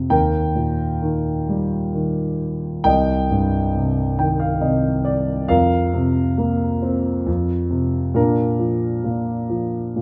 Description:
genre	classical, lyrical solo piano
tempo	67 BPM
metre	3/4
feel	rubato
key	Bb major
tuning	A4 = 440 Hz
part	dark grand piano	solo	0.0-10.0 s	C2 to G5	-20 LUFS	equal	none
room	light reverb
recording	close, detailed microphones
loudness	-20 LUFS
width	mono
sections	0.0-10.0 A section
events	grand piano fill 3.7-5.5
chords	0.1 Eb; 2.9 Cm; 5.5 Fsus4; 8.2 Bb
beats	| 0.11 1.04 1.96 | 2.86 3.75 4.62 | 5.49 6.38 7.27 | 8.16 9.04 9.97

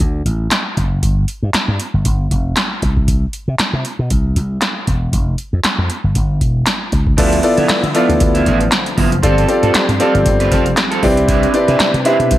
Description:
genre	early-eighties boogie funk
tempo	117 BPM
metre	4/4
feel	swing 56% on 16ths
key	D dorian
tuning	A4 = 441 Hz
part	slap bass with an envelope filter	bass	0.0-12.4 s	E1 to D3	-16 LUFS	equal	none
part	electro analog drum machine	drums	0.0-12.4 s	crash cymbal, handclaps, hi-hat, kick drum, snare drum	-17 LUFS	equal	gated reverb
part	warm concert grand piano	accompaniment	7.2-12.4 s	B3 to E5	-14 LUFS	left 1 dB	none
part	warm analog pad	sustained chords	7.2-12.4 s	C3 to E5	-24 LUFS	equal	chorus, phaser
part	electric guitar at the edge of break-up	riff	7.2-12.3 s	F3 to C5	-20 LUFS	right 4 dB	lush chorus
room	light reverb, digital ambience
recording	none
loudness	-13 LUFS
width	side -14 dB against mid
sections	0.0-7.2 A section; 7.2-12.4 B section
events	none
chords	0.0 D5; 1.0 N.C.; 5.1 Fsus2; 7.2 Dm69; 9.2 G9sus4; 11.0 Cmaj9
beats	0.00 0.51 | 1.03 1.54 2.05 2.56 | 3.08 3.59 4.10 4.62 | 5.13 5.64 6.15 6.67 | 7.18 7.69 8.21 8.72 | 9.23 9.74 10.26 10.77 | 11.28 11.79 12.31

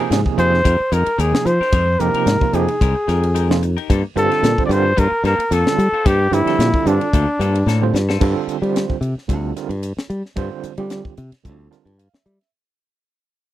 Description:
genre	electric jazz fusion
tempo	111 BPM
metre	4/4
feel	swing 53% on 16ths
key	G minor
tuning	A4 = 440 Hz
part	overdriven tine electric piano	accompaniment	0.0-12.5 s	C3 to A5	-22 LUFS	right 10 dB	fast tremolo
part	semi-hollow electric guitar	stabs	0.0-8.2 s	Ab3 to Bb4	-28 LUFS	left 15 dB	lush chorus
part	modern bright fingered electric bass	bass	0.1-12.4 s	C2 to G3	-18 LUFS	left 1 dB	none
part	crisp fusion drum kit	drums	0.1-12.5 s	crash cymbal, hi-hat, kick drum, ride cymbal, snare drum	-20 LUFS	left 1 dB	none
part	breathy trumpet	melody	0.4-7.9 s	D4 to D5	-18 LUFS	left 1 dB	slapback echo
room	little or no reverb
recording	dry, close 1970s-style studio recording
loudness	-15 LUFS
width	side -14 dB against mid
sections	0.0-8.2 A section; 8.2-12.5 B section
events	drum fill 7.7-8.2; fade-out 8.2-12.5; tine electric piano fill 11.4-12.5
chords	0.0 Fm11; 3.9 Gm11; 8.2 G9sus4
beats	0.12 0.66 1.20 | 1.74 2.28 2.82 3.35 | 3.90 4.43 4.97 5.51 | 6.05 6.59 7.13 7.67 | 8.21 8.75 9.29 9.82 | 10.36 10.90 11.44 11.98

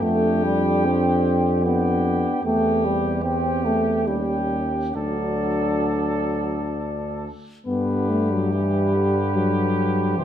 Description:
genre	classical, hymn-like piece for brass band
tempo	65-78 BPM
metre	3/4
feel	rubato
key	G major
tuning	A4 = 441 Hz
part	mellow cornet	melody	0.0-10.2 s	B4 to G5	-30 LUFS	left 6 dB	none
part	clear flugelhorn	second line	0.0-10.2 s	G4 to A4	-30 LUFS	right 6 dB	none
part	clear euphonium	accompaniment	0.0-10.2 s	C3 to C4	-25 LUFS	right 2 dB	none
part	warm euphonium	accompaniment	0.0-10.2 s	E3 to D4	-27 LUFS	left 4 dB	none
part	clear tuba	bass	0.0-10.2 s	C2 to G2	-24 LUFS	equal	none
room	wet stone room reverb, RT60 1.3 s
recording	minimal, uncompressed stereo recording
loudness	-19 LUFS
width	side -10 dB against mid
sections	0.0-7.7 A section; 7.7-10.2 B section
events	none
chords	0.0 G7/F; 2.4 C/E; 4.1 Eb7; 5.0 D; 7.7 G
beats	| 0.01 0.86 1.64 | 2.43 3.23 4.07 | 4.95 5.87 6.77 | 7.66 8.52 9.35 | 10.17

